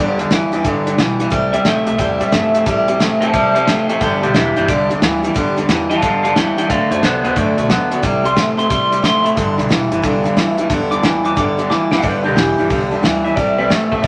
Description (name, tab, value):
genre	rockabilly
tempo	180 BPM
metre	4/4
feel	swing 65% on 8ths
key	G major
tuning	A4 = 440 Hz
part	electric guitar through a small old amp	melody	0.0-14.1 s	G4 to D6	-22 LUFS	equal	spring reverb
part	picked steel-string acoustic guitar	accompaniment	0.0-14.1 s	G2 to G4	-25 LUFS	equal	none
part	electric guitar through a small old amp	riff	0.0-14.1 s	G2 to B3	-19 LUFS	equal	none
part	upright bass	bass	0.0-14.1 s	E1 to C3	-31 LUFS	equal	none
part	cloth-damped thuddy drum kit	drums	0.2-14.1 s	hi-hat, kick drum, snare drum	-22 LUFS	equal	none
room	moderate studio reverb, RT60 0.8 s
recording	faint mains hum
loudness	-16 LUFS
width	mono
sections	0.0-12.0 A section; 12.0-14.1 B section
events	drum fill 11.7-12.0; clean electric guitar solo 12.0-14.1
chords	0.0 G6; 1.3 C6; 4.0 G6; 6.7 D6; 8.0 C6; 9.4 G6; 13.4 C6